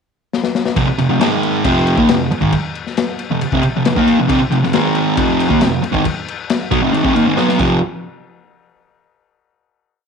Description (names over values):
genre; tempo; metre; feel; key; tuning
garage rock duo or trio; 136 BPM; 4/4; straight; unclear; A4 = 440 Hz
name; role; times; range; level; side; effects
crunchy breakbeat drum kit; drums; 0.3-7.7 s; crash cymbal, kick drum, snare drum; -20 LUFS; left 4 dB; none
fuzz guitar; riff; 0.8-7.8 s; F2 to Eb4; -13 LUFS; right 1 dB; distortion
room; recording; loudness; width
moderate plate reverb, RT60 1.2 s, small room ambience; 1960s-style stereo; -13 LUFS; side -6 dB against mid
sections
0.0-0.8 pickup bar; 0.8-7.8 riff; 7.8-9.6 final hit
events
drum fill 0.3-0.8, 7.4-7.8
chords
0.0 N.C.; 0.8 F5; 1.2 Ab5; 1.6 F5; 4.7 Ab5; 5.2 F5; 7.8 N.C.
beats
0.32 | 0.76 1.20 1.65 2.09 | 2.53 2.97 3.41 3.85 | 4.29 4.73 5.17 5.61 | 6.05 6.49 6.93 7.37